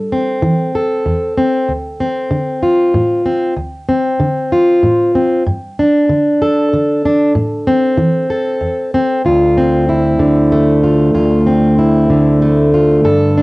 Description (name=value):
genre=folk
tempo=95 BPM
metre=3/4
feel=straight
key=D minor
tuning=A4 = 440 Hz
part: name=fingerpicked plugged-in steel-string acoustic guitar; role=solo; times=0.0-13.4 s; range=D2 to A4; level=-11 LUFS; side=equal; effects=cassette tape
room=wet studio reverb, RT60 0.6 s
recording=home recording on cassette, nothing above 10.4 kHz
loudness=-11 LUFS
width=side -22 dB against mid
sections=0.0-9.2 A section; 9.2-13.4 B section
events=none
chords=0.0 Am; 1.7 Dm7; 5.5 Gsus2; 7.4 Am; 9.2 Dm7